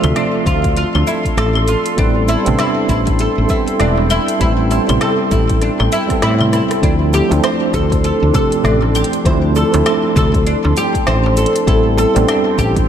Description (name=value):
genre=organic downtempo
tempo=99 BPM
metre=4/4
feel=swing 60% on 16ths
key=D dorian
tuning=A4 = 440 Hz
part: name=tine electric piano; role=accompaniment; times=0.0-12.9 s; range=F3 to E5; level=-19 LUFS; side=right 2 dB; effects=overdrive, fast stereo tremolo, sidechain pumping, ping-pong delay
part: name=warbly tape-like pad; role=sustained chords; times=0.0-12.9 s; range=D4 to C6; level=-22 LUFS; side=right 2 dB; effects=chorus, built-in reverb, sidechain pumping
part: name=oud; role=arpeggios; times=0.0-12.8 s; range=D4 to C5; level=-18 LUFS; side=equal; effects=ping-pong delay
part: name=woody fretless electric bass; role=bass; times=0.0-12.9 s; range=E1 to A2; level=-16 LUFS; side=equal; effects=sidechain pumping
part: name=organic electronic drum kit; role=drums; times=0.0-12.9 s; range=cabasa, claves, hi-hat, rim click, snare drum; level=-25 LUFS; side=left 1 dB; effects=studio reverb
part: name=darbuka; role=percussion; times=0.0-12.7 s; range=none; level=-25 LUFS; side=right 3 dB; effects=none
part: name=electronic kick drum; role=drums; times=0.5-12.9 s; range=none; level=-18 LUFS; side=equal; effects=overdrive, studio reverb
room=light reverb, digital ambience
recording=dark, warm production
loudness=-12 LUFS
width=side -9 dB against mid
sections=0.0-6.8 A section; 6.8-12.9 B section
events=drum fill 5.6-6.8; kick drops out 6.2-6.8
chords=0.0 Dm7; 2.0 Am7; 6.8 Dm7; 11.7 Am7